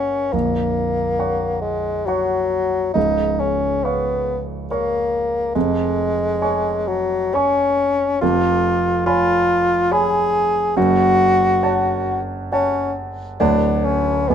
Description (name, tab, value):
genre	classical, romantic duo for bassoon and grand piano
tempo	69 BPM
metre	3/4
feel	rubato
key	F# minor from 8.2 s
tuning	A4 = 444 Hz
part	warm bassoon	melody	0.0-14.3 s	F#3 to G#4	-18 LUFS	left 2 dB	none
part	warm grand piano	accompaniment	0.0-14.3 s	A#0 to C#6	-21 LUFS	right 3 dB	none
room	light reverb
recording	minimal, uncompressed stereo recording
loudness	-16 LUFS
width	side -8 dB against mid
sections	0.0-14.3 A section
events	none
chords	0.3 F#/A#; 3.0 C#; 5.5 C#/E#; 8.2 C#7/E#; 10.8 F#m; 13.4 Dmaj7